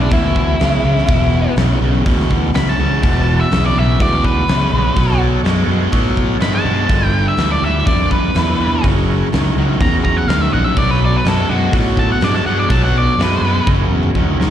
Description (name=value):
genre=blues rock power trio and southern rock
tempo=124 BPM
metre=4/4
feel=straight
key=B minor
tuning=A4 = 440 Hz
part: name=octave-fuzz lead guitar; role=melody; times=0.0-13.7 s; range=D4 to B5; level=-20 LUFS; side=equal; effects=distortion, slapback echo, tape echo
part: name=distorted electric guitar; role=riff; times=0.0-14.5 s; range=E2 to G#3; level=-18 LUFS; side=equal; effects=distortion, slapback echo
part: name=fingered electric bass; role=bass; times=0.0-14.5 s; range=E1 to A2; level=-17 LUFS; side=equal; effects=none
part: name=big rock drum kit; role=drums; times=0.1-14.5 s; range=hi-hat, kick drum, snare drum, toms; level=-19 LUFS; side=equal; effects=none
part: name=overdriven tonewheel organ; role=sustained chords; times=3.0-14.5 s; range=D4 to D#5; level=-29 LUFS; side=right 6 dB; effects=none
room=little or no reverb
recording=live gig heard through the venue's PA, recital hall reverb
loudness=-12 LUFS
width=side -10 dB against mid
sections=0.0-14.5 A section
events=lead electric guitar solo 0.0-14.5; drum fill 13.7-14.5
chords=0.0 Em7; 5.0 Bm7; 6.9 G7; 8.8 F#7; 10.8 Bm7; 13.7 F#7